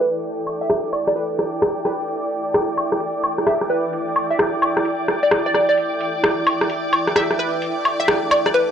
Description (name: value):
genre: UK garage, two-step garage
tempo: 130 BPM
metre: 4/4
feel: swing 64% on 16ths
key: E minor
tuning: A4 = 441 Hz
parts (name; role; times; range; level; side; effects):
- hollow square pluck; melody; 0.0-8.7 s; B4 to E5; -21 LUFS; equal; analog chorus, analog delay
- rich studio violin section; sustained chords; 0.0-8.7 s; D5 to D6; -28 LUFS; right 1 dB; none
- granular cloud pad; texture; 0.0-8.7 s; E4 to G5; -25 LUFS; right 1 dB; built-in reverb
- garage drum kit; drums; 0.2-8.7 s; hi-hat, rim click, woodblock; -19 LUFS; equal; low-pass filter on hats, low-pass filter on snare, low-pass filter on perc, low-pass filter on room
room: moderate digital room reverb, RT60 1.1 s, digital ambience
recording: dry, gritty hardware recording, transformer saturation, low-pass filter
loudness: -17 LUFS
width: side -8 dB against mid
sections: 0.0-8.7 A section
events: filter sweep 0.0-8.7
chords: 0.0 Em7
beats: | 0.24 0.70 1.16 1.62 | 2.08 2.54 3.01 3.47 | 3.93 4.39 4.85 5.31 | 5.78 6.24 6.70 7.16 | 7.62 8.08 8.54